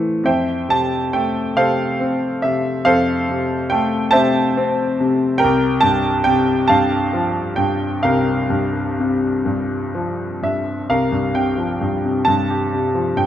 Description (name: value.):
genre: classical, lyrical solo piano.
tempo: 41-48 BPM (dotted quarters).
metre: 6/8.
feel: rubato.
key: F major.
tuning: A4 = 440 Hz.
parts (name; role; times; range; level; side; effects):
clear grand piano; solo; 0.0-13.3 s; C2 to A5; -16 LUFS; equal; none.
room: moderate scoring stage reverb, RT60 1.9 s.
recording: none.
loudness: -16 LUFS.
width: side -11 dB against mid.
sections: 0.2-10.9 A section; 10.9-13.3 B section.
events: none.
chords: 0.2 Fmaj7; 5.4 C7sus4.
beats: | 0.24 1.58 | 2.86 4.14 | 5.40 6.68 | 8.04 9.46 | 10.88 12.25.